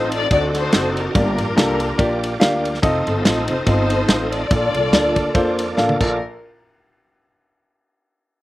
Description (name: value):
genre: uptempo gospel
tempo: 143 BPM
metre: 4/4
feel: swing 56% on 8ths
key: Bb major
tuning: A4 = 440 Hz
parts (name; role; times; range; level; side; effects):
- warm studio string section; melody; 0.0-6.2 s; C4 to D5; -22 LUFS; left 2 dB; slapback echo
- warm grand piano; accompaniment; 0.0-6.2 s; Bb1 to F5; -20 LUFS; left 1 dB; slapback echo
- bright tonewheel organ; sustained chords; 0.0-6.2 s; A3 to Eb5; -27 LUFS; right 2 dB; fast rotary speaker, overdrive, chorus vibrato
- upright bass; bass; 0.0-6.2 s; F1 to F2; -25 LUFS; equal; none
- warm soul drum kit; drums; 0.1-6.1 s; crash cymbal, kick drum, ride cymbal, snare drum, toms; -19 LUFS; right 1 dB; none
room: little or no reverb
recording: recorded outdoors, with no room sound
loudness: -16 LUFS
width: side -16 dB against mid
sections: 0.0-6.2 A section; 6.2-7.9 B section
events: drum fill 5.8-6.2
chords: 0.3 D7b9; 1.1 Gm7; 2.8 F7; 4.5 Bbmaj7; 6.2 N.C.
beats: 0.31 0.73 | 1.15 1.57 1.99 2.41 | 2.83 3.25 3.67 4.09 | 4.51 4.93 5.35 5.77